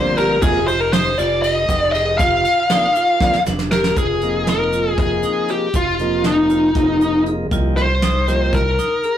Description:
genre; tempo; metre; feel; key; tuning
progressive instrumental, band music in an uneven meter; 237 BPM (eighths); 7/8; straight; F dorian; A4 = 440 Hz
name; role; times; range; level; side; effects
bluesy overdriven lead guitar; melody; 0.0-9.2 s; Eb4 to F5; -17 LUFS; left 1 dB; distortion
tonewheel organ; accompaniment; 0.0-8.6 s; C3 to G4; -25 LUFS; equal; stopped rotary speaker
vibraphone with hard mallets; arpeggios; 0.0-9.2 s; D4 to Ab4; -25 LUFS; right 4 dB; none
modern bright fingered electric bass; bass; 0.0-8.8 s; F1 to C2; -23 LUFS; equal; none
soft brush drum kit; drums; 0.2-9.2 s; hi-hat, kick drum, ride cymbal, snare drum; -22 LUFS; right 1 dB; none
tube shaker; percussion; 0.4-9.0 s; none; -41 LUFS; left 6 dB; none
room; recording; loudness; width
wet small room reverb, RT60 0.5 s; rough rehearsal-room recording, warm saturation; -15 LUFS; side -10 dB against mid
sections
0.0-4.0 A section; 4.0-9.2 B section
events
drum fill 3.2-4.0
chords
0.4 F7(no3); 2.2 Gm7/F (rootless); 4.0 Fm7; 7.5 Cm7

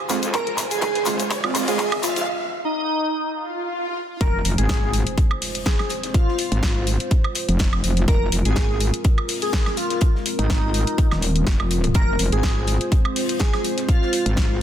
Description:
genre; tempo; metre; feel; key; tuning
bass house; 124 BPM; 4/4; swing 54% on 16ths; F minor; A4 = 440 Hz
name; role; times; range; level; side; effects
dark analog pad; sustained chords; 0.0-14.6 s; Ab3 to C6; -30 LUFS; left 1 dB; chorus, sidechain pumping
riser, swell and impact; sound effects; 0.0-6.1 s; none; -30 LUFS; equal; none
rich studio string section; texture; 0.0-2.3 s; F4 to Ab5; -35 LUFS; left 1 dB; none
orchestra-hit-like synth stab; stabs; 0.1-1.8 s; Ab3 to F4; -27 LUFS; right 3 dB; built-in reverb, sidechain pumping, tape echo
metallic wobble bass; bass; 0.1-14.6 s; Eb1 to F2; -22 LUFS; equal; chorus, sidechain pumping, high-pass filter
house drum kit; drums; 0.1-14.5 s; handclaps, hi-hat, snare drum, woodblock; -27 LUFS; equal; small room ambience
warm soul drum kit; drums; 0.1-14.5 s; hi-hat, snare drum; -36 LUFS; left 3 dB; none
tube shaker; percussion; 0.1-2.3 s; none; -32 LUFS; left 5 dB; none
airy dreamy lead; melody; 0.3-14.6 s; Eb4 to Bb4; -26 LUFS; equal; chorus, tape echo
electronic kick drum; drums; 0.3-14.5 s; none; -19 LUFS; equal; high-pass filter on kick, small room ambience
room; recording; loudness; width
little or no reverb; dense, heavily limited modern master, high-pass filter; -19 LUFS; side -10 dB against mid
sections
0.0-4.2 A section; 4.2-14.6 B section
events
build-up 0.0-4.2; drum fill 0.0-2.3; riser 0.0-2.3; filter sweep on synth stab 0.0-4.2; filter sweep 0.0-4.2; break 2.3-4.2; swell 3.4-4.2; drop 4.2-14.6; impact 4.2-6.1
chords
0.0 Fm

